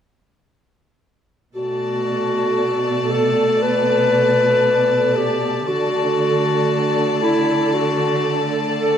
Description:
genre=cinematic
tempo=58 BPM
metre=4/4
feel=rubato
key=B minor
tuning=A4 = 441 Hz
part: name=clear clarinet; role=second line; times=1.6-9.0 s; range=E4 to B4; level=-18 LUFS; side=left 1 dB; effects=none
part: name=warm studio violin section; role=second line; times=1.6-9.0 s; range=D5 to A5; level=-23 LUFS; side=left 6 dB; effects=none
part: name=rich studio viola section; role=accompaniment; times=1.6-9.0 s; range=A3 to A4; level=-23 LUFS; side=right 4 dB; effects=none
part: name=warm studio cello section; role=bass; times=1.6-9.0 s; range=B2 to D3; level=-25 LUFS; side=right 2 dB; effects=none
room=wet recital hall reverb, RT60 1.6 s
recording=none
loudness=-16 LUFS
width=side -8 dB against mid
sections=1.6-9.0 A section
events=none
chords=1.6 Bm7; 5.7 D

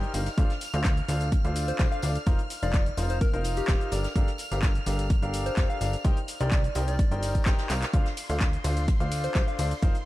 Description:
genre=piano house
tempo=127 BPM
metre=4/4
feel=straight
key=unclear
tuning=A4 = 440 Hz
part: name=string machine, violins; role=sustained chords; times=0.0-10.1 s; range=C6 to F6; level=-40 LUFS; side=equal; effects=ensemble chorus, sidechain pumping
part: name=clear concert grand piano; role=riff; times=0.0-9.9 s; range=D4 to G5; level=-34 LUFS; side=left 1 dB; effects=sidechain pumping, ping-pong delay
part: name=plucky analog bass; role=bass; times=0.0-9.9 s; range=Eb1 to D2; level=-28 LUFS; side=equal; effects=tube saturation, sidechain pumping
part: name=punchy analog drum machine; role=drums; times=0.0-10.0 s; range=cabasa, handclaps, hi-hat, ride cymbal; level=-36 LUFS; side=left 1 dB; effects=overdrive
part: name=jazz brush drum kit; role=drums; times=0.1-10.1 s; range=hi-hat, snare drum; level=-43 LUFS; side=right 3 dB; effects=high-pass filter on hats, high-pass filter on snare, high-pass filter on room
part: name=tambourine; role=percussion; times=0.1-9.9 s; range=none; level=-47 LUFS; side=left 5 dB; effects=none
part: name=electronic kick drum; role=drums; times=0.4-9.9 s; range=none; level=-24 LUFS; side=equal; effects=none
part: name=soft struck synth lead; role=melody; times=1.7-9.7 s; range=G4 to F5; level=-35 LUFS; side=left 2 dB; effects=chorus, ping-pong delay
room=studio reverb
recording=dark, warm production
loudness=-24 LUFS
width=side -16 dB against mid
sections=0.0-10.1 A section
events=drum fill 7.7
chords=0.4 Dm7; 2.3 F7sus4; 3.9 Gm9; 6.0 Cm7; 7.9 Dm7

